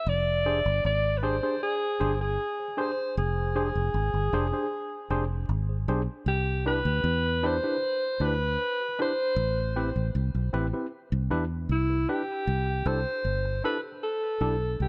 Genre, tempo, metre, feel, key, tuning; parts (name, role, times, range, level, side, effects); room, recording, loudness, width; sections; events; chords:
lovers rock reggae; 77 BPM; 4/4; straight; C major; A4 = 440 Hz
breathy alto saxophone; melody; 0.0-14.9 s; E4 to E5; -31 LUFS; equal; tape echo
fingered electric bass; bass; 0.1-14.9 s; F1 to E2; -30 LUFS; equal
tine electric piano; accompaniment; 0.5-14.5 s; C4 to C5; -35 LUFS; equal
light reverb, studio reverb; -28 LUFS; mono
0.0-12.5 A section; 12.5-14.9 B section
0.1 Fm6; 6.3 Cmaj9; 9.4 Am7; 10.9 Cmaj7; 12.5 C6